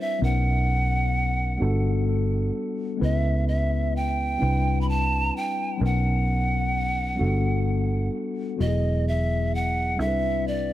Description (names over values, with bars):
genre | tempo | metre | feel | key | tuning
slow six-eight R&B | 43 BPM (dotted quarters) | 6/8 | straight | unclear | A4 = 440 Hz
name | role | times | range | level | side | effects
polished pan flute | melody | 0.0-10.7 s | D5 to B5 | -28 LUFS | right 2 dB | analog delay
mellow tine electric piano | accompaniment | 0.0-10.7 s | F#3 to B4 | -28 LUFS | moving between left 8 dB and left 1 dB | auto-pan, analog delay
vintage muted fingered electric bass | bass | 0.2-10.7 s | E1 to C#2 | -24 LUFS | right 1 dB | none
room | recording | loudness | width
light reverb | echo-heavy mix | -22 LUFS | side -14 dB against mid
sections
0.0-10.7 A section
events
none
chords
0.2 Bmaj9; 1.6 Gmaj9; 3.0 C#m7; 4.4 Cmaj9; 5.8 Bmaj9; 7.2 Gmaj9; 8.6 Eadd9; 10.0 Cmaj9